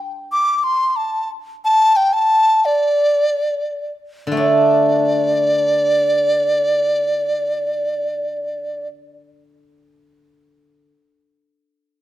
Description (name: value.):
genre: chinese traditional, Chinese chamber ensemble.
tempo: 61-91 BPM.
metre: 2/4.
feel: rubato.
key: unclear.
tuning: A4 = 440 Hz.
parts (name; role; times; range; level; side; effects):
mellow hollow large dizi; melody; 0.3-8.9 s; D5 to D6; -16 LUFS; equal; none.
steel-string zither; accompaniment; 4.3-10.9 s; D3 to D4; -18 LUFS; right 1 dB; none.
room: wet recital hall reverb, RT60 1.4 s.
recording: close, detailed microphones.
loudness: -15 LUFS.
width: side -14 dB against mid.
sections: 0.0-4.4 A section; 4.4-8.2 B section.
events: slowing down 1.3-4.4.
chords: none.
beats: 0.64 | 1.30 1.98 | 2.68 3.48 | 4.39 5.37 | 6.33 7.28.